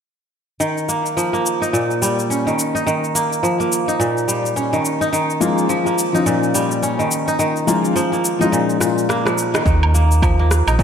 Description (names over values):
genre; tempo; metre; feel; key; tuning
organic downtempo; 106 BPM; 4/4; swing 59% on 16ths; Eb mixolydian; A4 = 440 Hz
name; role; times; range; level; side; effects
kora; arpeggios; 0.6-10.8 s; Bb2 to Eb4; -18 LUFS; equal; low-pass filter, ping-pong delay
electronic cabasa, rim click and woodblock; drums; 0.6-10.8 s; none; -24 LUFS; equal; none
felt-muted upright piano; accompaniment; 5.4-9.7 s; F3 to F4; -20 LUFS; left 3 dB; sidechain pumping, ping-pong delay
round analog bass; bass; 9.7-10.8 s; Bb1 to Eb2; -14 LUFS; right 1 dB; sidechain pumping
electronic kick drum; drums; 9.7-10.8 s; none; -17 LUFS; right 1 dB; overdrive
room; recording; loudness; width
wet plate reverb, RT60 2.0 s; dreamy mix soaked in reverb; -16 LUFS; side -8 dB against mid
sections
0.6-9.7 A section; 9.7-10.8 B section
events
drum fill 8.8-9.7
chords
0.6 Ebadd9; 5.1 Dbadd9; 9.7 Ebsus2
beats
| 0.60 1.17 1.74 2.30 | 2.87 3.44 4.00 4.57 | 5.13 5.70 6.26 6.83 | 7.40 7.96 8.53 9.10 | 9.66 10.23 10.79